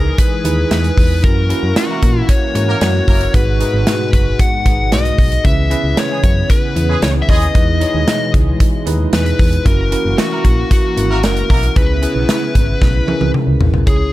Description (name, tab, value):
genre	1980s-style pop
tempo	114 BPM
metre	4/4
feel	straight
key	C# dorian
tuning	A4 = 440 Hz
part	fuzz lead guitar	melody	0.0-14.1 s	F#4 to F#5	-20 LUFS	left 3 dB	distortion, tape echo
part	bell-like tine electric piano	accompaniment	0.0-14.1 s	G#2 to C#5	-22 LUFS	right 2 dB	medium stereo tremolo
part	brassy analog pad	sustained chords	0.0-13.8 s	B2 to G#4	-25 LUFS	left 2 dB	chorus
part	solid FM bass	bass	0.0-14.1 s	F#1 to A#2	-17 LUFS	equal	none
part	modern studio drum kit	drums	0.2-14.0 s	hi-hat, kick drum, snare drum, toms	-14 LUFS	equal	none
part	mellow horn section	stabs	1.9-11.7 s	G#3 to A#4	-27 LUFS	right 1 dB	tape echo
room	small room ambience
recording	none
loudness	-12 LUFS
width	side -16 dB against mid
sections	0.0-13.9 A section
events	drum fill 12.8-13.9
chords	0.0 Emaj7; 1.2 F#7; 3.3 G#m7; 5.4 C#m7; 7.6 Emaj7; 9.7 F#7; 11.8 C#m7